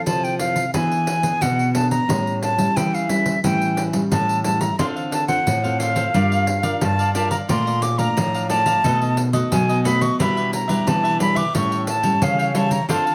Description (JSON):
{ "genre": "samba and choro", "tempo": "89 BPM", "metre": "4/4", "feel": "straight", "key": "unclear", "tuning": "A4 = 442 Hz", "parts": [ { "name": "breathy concert flute", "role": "melody", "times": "0.0-13.1 s", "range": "E5 to D6", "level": "-24 LUFS", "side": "equal", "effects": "none" }, { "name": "nylon-string guitar", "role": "accompaniment", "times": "0.0-13.1 s", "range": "A2 to Bb4", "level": "-27 LUFS", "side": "equal", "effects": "none" }, { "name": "nylon-string guitar", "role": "bass", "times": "0.1-13.1 s", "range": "G2 to F3", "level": "-26 LUFS", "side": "equal", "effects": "none" }, { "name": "pandeiro", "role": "percussion", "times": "0.1-13.1 s", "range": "none", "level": "-28 LUFS", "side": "equal", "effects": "none" }, { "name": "cavaquinho", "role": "accompaniment", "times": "4.8-13.1 s", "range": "D4 to Bb5", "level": "-31 LUFS", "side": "equal", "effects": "none" } ], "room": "moderate studio reverb, RT60 0.7 s", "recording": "none", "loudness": "-20 LUFS", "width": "mono", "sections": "0.0-13.1 A section", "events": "none", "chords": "0.0 Fmaj7; 0.7 E7; 2.1 A7; 4.8 Dm7; 6.1 Gm7; 7.5 Bbmaj7; 8.8 B7; 10.2 Em7/B; 11.5 A7" }